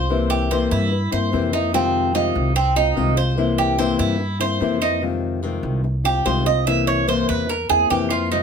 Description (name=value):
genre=latin, Cuban son and guajira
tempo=146 BPM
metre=4/4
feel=straight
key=F minor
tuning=A4 = 440 Hz
part: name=nylon-string guitar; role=accompaniment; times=0.0-8.4 s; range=C3 to F4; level=-22 LUFS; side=left 6 dB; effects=none
part: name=Cuban tres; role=arpeggios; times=0.0-8.4 s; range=C4 to E5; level=-21 LUFS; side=right 4 dB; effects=none
part: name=upright bass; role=bass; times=0.0-8.4 s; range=C2 to G2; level=-23 LUFS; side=right 1 dB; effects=none
room=moderate studio reverb, RT60 0.7 s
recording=none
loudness=-17 LUFS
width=side -6 dB against mid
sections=0.0-5.0 A section; 5.0-8.4 B section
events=Cuban tres solo 5.0-8.4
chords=0.1 C7; 1.7 Fm7; 3.4 C7; 5.0 Fm7; 6.7 C7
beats=| 0.09 0.50 0.91 1.32 | 1.74 2.15 2.56 2.97 | 3.38 3.79 4.20 4.61 | 5.02 5.43 5.84 6.26 | 6.67 7.08 7.49 7.90 | 8.31